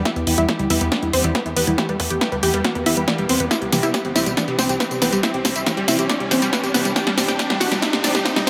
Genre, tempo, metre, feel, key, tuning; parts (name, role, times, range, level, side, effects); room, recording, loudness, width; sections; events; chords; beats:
uplifting trance; 139 BPM; 4/4; straight; A4 = 440 Hz
unison pluck; melody; 0.0-8.5 s; B3 to G5; -25 LUFS; equal; cassette tape, sidechain pumping, dub echo
plucky analog bass; bass; 0.0-8.5 s; E1 to E2; -31 LUFS; equal; sidechain pumping
riser; sound effects; 0.3-8.5 s; -31 LUFS; equal
warm studio string section; sustained chords; 0.1-8.5 s; E3 to G4; -31 LUFS; equal; sidechain pumping
unison pluck; arpeggios; 0.1-8.5 s; E3 to C4; -28 LUFS; equal; sidechain pumping, dub echo
electronic kick drum; drums; 0.1-8.3 s; -30 LUFS; equal; overdrive, high-pass filter on kick
punchy analog drum machine; drums; 0.1-8.5 s; hi-hat, snare drum, tambourine; -24 LUFS; equal; overdrive
moderate lush hall reverb, RT60 1.6 s, digital ambience; high-pass filter; -20 LUFS; mono
0.0-8.5 A section
build-up 0.0-8.5; drum fill 0.0-8.5; filter sweep on synth pluck 0.0-8.5; riser 0.3-8.5
0.0 Em; 3.5 C
| 0.06 0.49 0.92 1.35 | 1.78 2.21 2.65 3.08 | 3.51 3.94 4.37 4.80 | 5.24 5.67 6.10 6.53 | 6.96 7.39 7.83 8.26